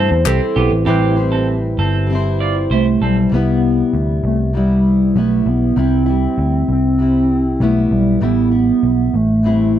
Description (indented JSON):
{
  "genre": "indie pop, bedroom pop",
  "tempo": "98 BPM",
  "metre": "4/4",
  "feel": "straight",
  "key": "unclear",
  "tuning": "A4 = 438 Hz",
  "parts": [
    { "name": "warbly nostalgic lead", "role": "melody", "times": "0.0-9.8 s", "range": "G3 to C5", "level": "-15 LUFS", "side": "right 1 dB", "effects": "lush chorus, slapback echo" },
    { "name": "clean electric guitar", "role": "second line", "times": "0.0-3.2 s", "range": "B3 to D5", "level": "-22 LUFS", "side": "right 6 dB", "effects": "wide subtle chorus, slapback echo" },
    { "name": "bright tine electric piano", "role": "accompaniment", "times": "0.0-3.3 s", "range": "C4 to C5", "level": "-23 LUFS", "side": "right 6 dB", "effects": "overdrive, cassette tape" },
    { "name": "fingerpicked plugged-in steel-string acoustic guitar", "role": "accompaniment", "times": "0.0-9.8 s", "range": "A2 to C5", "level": "-22 LUFS", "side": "left 3 dB", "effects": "wide subtle chorus, vibrato effect" },
    { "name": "string machine, cellos", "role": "sustained chords", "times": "0.0-0.8 s", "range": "none", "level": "barely audible", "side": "none", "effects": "none" },
    { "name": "vintage muted picked electric bass", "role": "bass", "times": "0.0-9.8 s", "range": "G1 to E2", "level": "-17 LUFS", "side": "equal", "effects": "none" }
  ],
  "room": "light reverb",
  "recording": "dry, close 1970s-style studio recording",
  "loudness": "-13 LUFS",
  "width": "side -11 dB against mid",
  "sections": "0.9-3.3 A section; 3.3-9.8 B section",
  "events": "none",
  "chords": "0.0 Am7; 3.3 Cmaj7; 8.2 Am7"
}